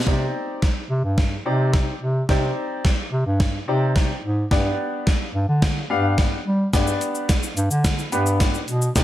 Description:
dance-pop; 108 BPM; 4/4; straight; C harmonic minor; A4 = 441 Hz
gated 80s digital drum machine; drums; 0.0-9.0 s; hi-hat, kick drum, shaker, snare drum; -21 LUFS; equal; gated reverb, gated reverb snare
clear baby grand piano; accompaniment; 0.1-9.0 s; B3 to F5; -26 LUFS; left 2 dB; wide subtle chorus, sidechain pumping
mellow bass clarinet; bass; 0.1-9.0 s; G2 to G3; -22 LUFS; equal; sidechain pumping
light reverb; bright 1980s-style digital production; -19 LUFS; side -13 dB against mid
0.1-9.0 A section
build-up 0.1-9.0; drum fill 0.1-9.0
0.1 Cmadd9; 4.5 G

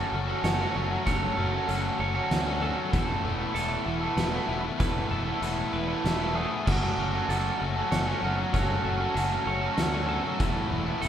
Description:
post-rock; 96 BPM; 3/4; straight; F# minor; A4 = 440 Hz
twelve-string electric guitar; arpeggios; 0.0-11.1 s; G#4 to C#5; -36 LUFS; right 2 dB; spring reverb
crunchy overdriven guitar; riff; 0.0-11.1 s; E3 to F#4; -31 LUFS; left 6 dB
raw garage guitar; riff; 0.0-11.1 s; E3 to A4; -30 LUFS; right 5 dB; overdrive
growling fingered electric bass; bass; 0.1-11.1 s; E1 to D2; -32 LUFS; equal; overdrive
oversized low-tuned drum kit; drums; 0.4-11.1 s; crash cymbal, hi-hat, kick drum, snare drum; -31 LUFS; equal
wet church reverb, RT60 2.5 s; recorded in a church or concert hall; -25 LUFS; side -9 dB against mid
0.0-11.1 A section
0.0 F#m; 2.9 Esus4; 6.7 F#m; 10.4 Esus4

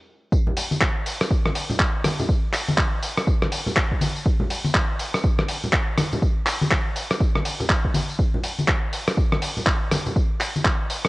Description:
house; 122 BPM; 4/4; swing 60% on 16ths
dusty soul sampler-style drum kit; drums; 0.3-11.1 s; handclaps, hi-hat, rim click, tambourine; -24 LUFS; equal; low-pass filter on hats, cassette tape, low-pass filter on perc, low-pass filter on snare, low-pass filter on room
electronic kick drum; drums; 0.3-10.8 s; -22 LUFS; equal; cassette tape
congas; percussion; 0.5-10.6 s; -26 LUFS; left 1 dB
light reverb; home recording on cassette; -20 LUFS; side -21 dB against mid
0.3-11.1 A section
stop 0.0-0.3; drop 0.3-11.1

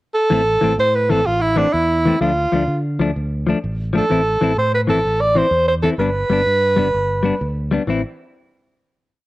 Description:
highlife guitar band; 127 BPM (dotted quarters); 12/8; straight; A minor; A4 = 437 Hz
breathy alto saxophone; melody; 0.1-7.5 s; D4 to D5; -16 LUFS; right 1 dB; cassette tape
clean electric guitar; accompaniment; 0.3-8.0 s; E3 to E4; -19 LUFS; left 4 dB; warbly pitch drift
fingered electric bass; bass; 0.3-8.0 s; G1 to D3; -22 LUFS; equal
light reverb, small room ambience; home recording on cassette; -15 LUFS; side -17 dB against mid
0.0-0.3 pickup bar; 0.3-7.9 groove; 7.9-9.3 final chord
0.3 Am; 2.2 Dm; 4.1 Am; 6.0 G; 7.9 Am

